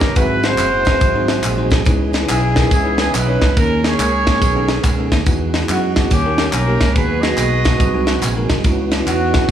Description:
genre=uptempo gospel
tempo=141 BPM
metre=4/4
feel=swing 65% on 8ths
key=unclear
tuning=A4 = 439 Hz
part: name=mellow horn section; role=melody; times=0.0-9.5 s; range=A#3 to D#5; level=-19 LUFS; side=right 1 dB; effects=none
part: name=bell-like tine electric piano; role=accompaniment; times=0.0-9.5 s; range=G#2 to C#5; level=-23 LUFS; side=left 4 dB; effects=none
part: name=tonewheel organ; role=sustained chords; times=0.0-9.5 s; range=B2 to G#5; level=-25 LUFS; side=right 5 dB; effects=chorus vibrato, slow rotary speaker
part: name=fingered electric bass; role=bass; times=0.0-9.5 s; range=F#1 to F#2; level=-20 LUFS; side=right 1 dB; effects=none
part: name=tight funk drum kit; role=drums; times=0.0-9.5 s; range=kick drum, ride cymbal, snare drum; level=-18 LUFS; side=equal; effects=none
part: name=tambourine and handclaps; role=percussion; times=0.0-9.4 s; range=none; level=-28 LUFS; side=left 1 dB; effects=none
room=light reverb, small room ambience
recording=small room reverb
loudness=-13 LUFS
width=side -10 dB against mid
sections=0.0-9.5 A section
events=tonewheel organ fill 7.8-8.7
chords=0.2 G#7alt; 1.0 G#7; 1.9 C#m9; 3.6 D#7sus4; 4.4 B13; 5.3 Emaj9; 6.1 D#7; 7.0 G#m9/D#; 7.8 G#7/B#; 8.7 C#m11

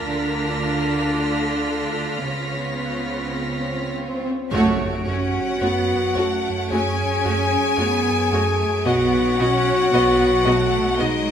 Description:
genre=cinematic, suspense film score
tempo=55 BPM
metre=4/4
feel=straight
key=F# minor from 4.5 s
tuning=A4 = 440 Hz
part: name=warm chamber violin section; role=melody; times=0.0-11.1 s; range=A4 to D#5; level=-32 LUFS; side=left 1 dB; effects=none
part: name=clear chamber violin section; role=second line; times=0.0-11.3 s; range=F4 to G#5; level=-26 LUFS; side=left 4 dB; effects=none
part: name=rich chamber viola section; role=accompaniment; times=0.0-11.1 s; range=A3 to F#4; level=-27 LUFS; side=right 2 dB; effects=none
part: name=rich chamber double bass section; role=bass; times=0.0-11.3 s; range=B1 to F#2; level=-30 LUFS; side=right 3 dB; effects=none
part: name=rich studio cello section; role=bass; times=0.0-11.3 s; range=C#3 to C#4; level=-26 LUFS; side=right 2 dB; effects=none
part: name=swell and impact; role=sound effects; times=3.1-8.9 s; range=none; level=-32 LUFS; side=equal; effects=none
part: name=Celtic harp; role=texture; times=0.0-11.3 s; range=C#5 to F#6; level=-33 LUFS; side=left 8 dB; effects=none
part: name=clear studio violin section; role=texture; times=0.0-11.3 s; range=C#5 to D7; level=-31 LUFS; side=left 2 dB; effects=none
part: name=round analog bass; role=riff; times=4.5-11.3 s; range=F#2 to B2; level=-28 LUFS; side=right 3 dB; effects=none
part: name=timpani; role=percussion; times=4.5-6.1 s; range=F#2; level=-34 LUFS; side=equal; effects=none
part: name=warm clarinet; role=second line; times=5.0-11.3 s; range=D#4 to G#4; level=-21 LUFS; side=left 1 dB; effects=none
room=wet scoring stage reverb, RT60 2.0 s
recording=none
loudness=-18 LUFS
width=side -8 dB against mid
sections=0.0-4.5 A section; 4.5-11.3 B section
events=swell 3.1-4.5; band accent 4.5-5.6; impact 4.5-8.9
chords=0.0 Dm; 2.3 C#7; 4.5 F#m; 8.9 B

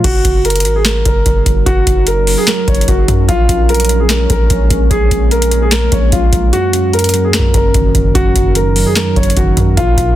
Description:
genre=hip hop, trap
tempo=148 BPM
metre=4/4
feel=half-time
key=unclear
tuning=A4 = 441 Hz
part: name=dark grand piano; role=melody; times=0.0-10.2 s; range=F4 to Db5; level=-15 LUFS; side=right 1 dB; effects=tape echo
part: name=mellow tine electric piano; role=accompaniment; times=0.0-0.1, 6.5-10.2 s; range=Gb2 to Gb3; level=-16 LUFS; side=right 1 dB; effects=none
part: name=deep dark ambient pad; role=sustained chords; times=0.8-10.2 s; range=Gb3 to Bb4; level=-21 LUFS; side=equal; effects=chorus, built-in reverb
part: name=long sustained 808-style bass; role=bass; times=0.0-10.2 s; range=Gb1 to Gb2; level=-15 LUFS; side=equal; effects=none
part: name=booming analog drum machine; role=drums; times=0.0-10.2 s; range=crash cymbal, handclaps, hi-hat, kick drum, snare drum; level=-14 LUFS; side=equal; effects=overdrive
room=little or no reverb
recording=dense, heavily limited modern master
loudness=-10 LUFS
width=side -13 dB against mid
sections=0.0-10.2 A section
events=kick muted 6.5-7.3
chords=0.0 Gb6; 3.3 Bbm7; 6.5 Gb6

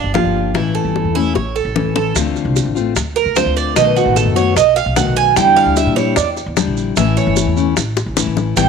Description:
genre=latin, Cuban son and guajira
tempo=150 BPM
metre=4/4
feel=straight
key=D minor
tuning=A4 = 438 Hz
part: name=Cuban tres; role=arpeggios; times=0.0-8.7 s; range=D4 to G#5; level=-16 LUFS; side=right 10 dB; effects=none
part: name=upright bass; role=bass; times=0.0-8.7 s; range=G1 to Bb2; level=-20 LUFS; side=equal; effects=none
part: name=fingerpicked steel-string acoustic guitar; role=accompaniment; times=0.1-8.7 s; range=B2 to G4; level=-18 LUFS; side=left 9 dB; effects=none
part: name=bongos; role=percussion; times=0.1-8.7 s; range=none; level=-22 LUFS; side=left 9 dB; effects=none
part: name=maracas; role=percussion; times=2.2-8.7 s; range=none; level=-25 LUFS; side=right 11 dB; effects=none
room=moderate echo chamber reverb, RT60 1.7 s, small room ambience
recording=1960s-style stereo with parts hard left and right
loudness=-13 LUFS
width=side -6 dB against mid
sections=0.0-2.2 A section; 2.2-8.7 B section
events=drum fill 1.4-2.2, 8.0-8.6; Cuban tres solo 2.2-8.7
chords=0.0 Gm7; 0.5 A; 2.2 Dm7; 3.8 B7; 5.4 Em7b5; 7.0 A

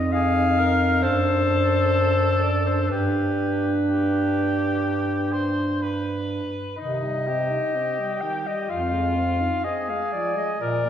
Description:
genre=classical, lyrical piece for single-reed quartet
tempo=63 BPM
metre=4/4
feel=rubato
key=unclear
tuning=A4 = 440 Hz
part: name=clear clarinet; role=melody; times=0.0-10.9 s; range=B4 to G5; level=-25 LUFS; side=left 4 dB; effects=none
part: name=warm alto saxophone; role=second line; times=0.0-10.9 s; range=Eb3 to Eb4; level=-27 LUFS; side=right 3 dB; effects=none
part: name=clear bass clarinet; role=bass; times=0.0-10.9 s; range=F2 to C3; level=-26 LUFS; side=right 1 dB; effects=none
part: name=warm tenor saxophone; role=accompaniment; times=0.1-10.9 s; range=Eb4 to C5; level=-28 LUFS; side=left 1 dB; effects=none
room=wet scoring stage reverb, RT60 1.6 s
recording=heard from further back in the room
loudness=-20 LUFS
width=side -9 dB against mid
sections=0.0-10.9 A section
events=none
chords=0.0 Fm7; 1.0 D7/F#; 2.9 G; 6.8 Cm; 8.7 Fm7

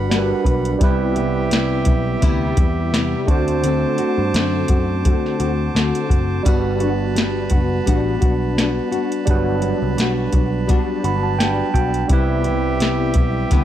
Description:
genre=indie pop, bedroom pop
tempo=85 BPM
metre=4/4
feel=swing 55% on 16ths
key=unclear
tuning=A4 = 440 Hz
part: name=nylon-string guitar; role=accompaniment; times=0.0-13.6 s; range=C3 to B4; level=-22 LUFS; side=left 4 dB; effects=ensemble chorus, vibrato effect
part: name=overdriven tine electric piano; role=accompaniment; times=0.0-13.6 s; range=F#3 to B5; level=-24 LUFS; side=right 7 dB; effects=cassette tape
part: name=accordion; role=sustained chords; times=0.0-13.6 s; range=G3 to D6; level=-28 LUFS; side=right 3 dB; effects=none
part: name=vintage muted picked electric bass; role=bass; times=0.0-13.6 s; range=F#1 to G2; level=-23 LUFS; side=equal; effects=none
part: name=soft vintage rhythm box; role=drums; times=0.1-13.6 s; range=hi-hat, kick drum, snare drum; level=-19 LUFS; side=equal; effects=none
room=little or no reverb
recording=none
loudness=-16 LUFS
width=side -11 dB against mid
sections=0.0-13.6 A section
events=tine electric piano fill 10.7-12.1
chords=0.0 Gmaj7; 0.8 Cmaj7; 3.3 D7; 6.5 Gmaj7; 12.1 Cmaj7

